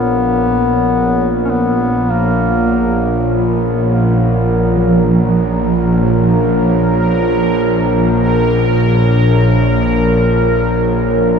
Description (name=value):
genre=dark ambient drone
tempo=free time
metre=none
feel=none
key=Bb phrygian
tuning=A4 = 439 Hz
part: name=warm duduk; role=melody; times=0.0-3.3 s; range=Bb3 to Db4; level=-20 LUFS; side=left 1 dB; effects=dub echo
part: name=deep dark ambient pad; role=sustained chords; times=0.0-11.4 s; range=F4 to Db5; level=-18 LUFS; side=equal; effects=chorus, built-in reverb
part: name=gamelan-type bronze metallophone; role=arpeggios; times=0.0-11.4 s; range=F3 to Bb4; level=-20 LUFS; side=right 2 dB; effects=none
part: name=bowed-like drone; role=drone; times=0.0-11.4 s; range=Bb1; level=-14 LUFS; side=equal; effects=built-in reverb
part: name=bubbling stepped-filter texture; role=texture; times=4.9-11.4 s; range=Bb4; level=-20 LUFS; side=right 2 dB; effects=chorus, built-in reverb
room=wet plate reverb, RT60 2.6 s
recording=echo-heavy mix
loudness=-11 LUFS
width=side -6 dB against mid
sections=0.0-11.4 A section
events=none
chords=0.0 Bb5